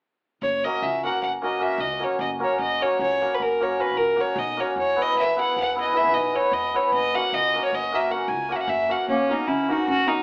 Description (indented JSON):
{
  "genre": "balkan folk",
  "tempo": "305 BPM (eighths)",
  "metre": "11/8",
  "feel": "straight",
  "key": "F# mixolydian",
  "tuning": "A4 = 440 Hz",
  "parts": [
    { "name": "clear fiddle", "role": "melody", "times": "0.4-10.2 s", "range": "C#4 to G#5", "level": "-26 LUFS", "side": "equal", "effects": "none" },
    { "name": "upright bass", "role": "bass", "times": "0.4-10.2 s", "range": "E1 to C#2", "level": "-41 LUFS", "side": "equal", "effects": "none" },
    { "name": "hammered dulcimer", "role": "accompaniment", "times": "0.6-10.2 s", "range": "A#3 to B4", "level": "-27 LUFS", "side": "equal", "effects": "none" },
    { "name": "mellow clarinet", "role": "second line", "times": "9.1-10.2 s", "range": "A#3 to D#4", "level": "-28 LUFS", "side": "equal", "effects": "none" }
  ],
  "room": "wet studio reverb, RT60 0.6 s",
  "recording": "heard from further back in the room, AM radio sound",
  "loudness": "-23 LUFS",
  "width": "mono",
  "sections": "0.4-9.1 A section; 9.1-10.2 A section",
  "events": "none",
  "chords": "0.4 F#; 4.8 E; 6.9 F#",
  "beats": "| 0.43 0.62 0.82 1.02 1.21 1.41 1.61 1.80 2.00 2.20 2.39 | 2.59 2.79 2.98 3.18 3.38 3.57 3.77 3.97 4.16 4.36 4.56 | 4.75 4.95 5.15 5.34 5.54 5.74 5.93 6.13 6.33 6.52 6.72 | 6.92 7.11 7.31 7.51 7.70 7.90 8.09 8.29 8.48 8.68 8.88 | 9.07 9.27 9.46 9.65 9.85 10.04"
}